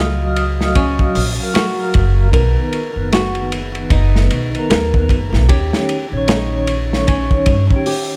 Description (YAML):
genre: trip hop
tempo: 76 BPM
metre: 4/4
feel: swing 59% on 16ths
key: unclear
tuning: A4 = 439 Hz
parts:
  - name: percussive tonewheel organ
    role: accompaniment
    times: 0.0-8.2 s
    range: D#3 to F5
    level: -23 LUFS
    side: equal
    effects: slow rotary speaker, tremolo, tape echo
  - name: flamenco guitar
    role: arpeggios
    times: 0.0-8.2 s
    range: Db4 to A#4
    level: -26 LUFS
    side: equal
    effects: digital delay
  - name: upright bass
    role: bass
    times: 0.0-7.7 s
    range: Gb1 to G2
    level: -19 LUFS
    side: equal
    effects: none
  - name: crunchy breakbeat drum kit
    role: drums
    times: 0.4-8.1 s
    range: hi-hat, kick drum, ride cymbal, snare drum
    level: -20 LUFS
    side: equal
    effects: none
room: small room reverb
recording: none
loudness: -16 LUFS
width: mono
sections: 0.0-8.2 A section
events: none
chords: 0.0 Gbmaj7; 2.3 Bmaj7; 5.5 Eb7